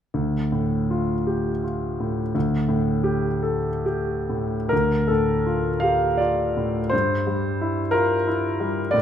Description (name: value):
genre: classical, romantic nocturne for solo piano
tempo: 43-63 BPM (dotted quarters)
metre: 12/8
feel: rubato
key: D minor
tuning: A4 = 441 Hz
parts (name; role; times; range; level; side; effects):
- clear grand piano; solo; 0.1-9.0 s; D2 to F5; -20 LUFS; equal; none
room: wet recital hall reverb, RT60 1.4 s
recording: minimal, uncompressed stereo recording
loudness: -21 LUFS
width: side -9 dB against mid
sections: 0.1-4.7 A section; 4.7-9.0 B section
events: none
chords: 0.1 Dm; 2.4 Dsus4; 4.7 Dm; 6.9 Edim/G